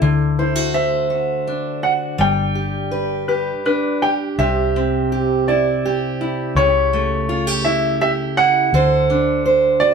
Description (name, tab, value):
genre	six-eight pop ballad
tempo	55 BPM (dotted quarters)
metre	6/8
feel	straight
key	C major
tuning	A4 = 440 Hz
part	fingerpicked steel-string acoustic guitar	accompaniment	0.0-9.9 s	C3 to C5	-19 LUFS	right 2 dB	none
part	vintage muted fingered electric bass	bass	0.0-9.9 s	G1 to D2	-22 LUFS	left 2 dB	none
part	clear baby grand piano	melody	0.4-9.9 s	B4 to G5	-20 LUFS	right 1 dB	none
room	wet studio reverb, RT60 0.8 s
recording	band playing live in one room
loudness	-16 LUFS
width	side -6 dB against mid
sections	0.0-4.4 A section; 4.4-9.9 B section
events	none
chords	0.0 D7; 2.2 G; 4.4 C; 6.6 A7/C#; 8.7 D7